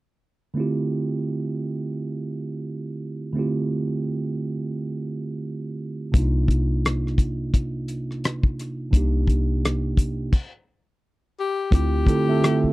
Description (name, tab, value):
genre	R&B, neo-soul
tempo	86 BPM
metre	4/4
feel	swing 59% on 16ths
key	D minor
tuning	A4 = 440 Hz
part	mellow tine electric piano	accompaniment	0.5-12.7 s	C3 to E5	-25 LUFS	right 2 dB	none
part	deep dub fingered electric bass	bass	6.1-12.7 s	C2 to D2	-24 LUFS	left 1 dB	none
part	cloth-damped thuddy drum kit	drums	6.1-12.6 s	crash cymbal, hi-hat, kick drum, rim click	-19 LUFS	left 1 dB	none
part	breathy tenor saxophone	melody	11.4-12.7 s	G4	-25 LUFS	left 6 dB	none
room	little or no reverb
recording	dry, close 1970s-style studio recording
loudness	-22 LUFS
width	side -19 dB against mid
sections	0.6-11.7 A section; 11.7-12.7 B section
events	stop 10.3-11.7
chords	0.6 Dm11; 6.1 Cm11; 11.4 N.C.; 11.7 Dm11